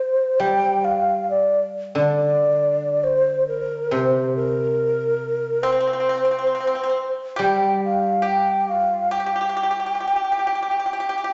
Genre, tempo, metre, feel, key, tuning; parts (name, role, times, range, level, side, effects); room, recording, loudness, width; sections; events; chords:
chinese traditional, Chinese chamber ensemble; 69 BPM; 4/4; rubato; G yu mode; A4 = 440 Hz
breathy hollow low xiao; melody; 0.0-11.3 s; Bb4 to G5; -22 LUFS; equal
guzheng; accompaniment; 0.4-10.0 s; C3 to G3; -28 LUFS; equal
pipa; second line; 5.6-11.3 s; C4 to G4; -30 LUFS; equal
wet recital hall reverb, RT60 1.6 s; nothing above 7.8 kHz; -21 LUFS; mono
0.0-11.3 A section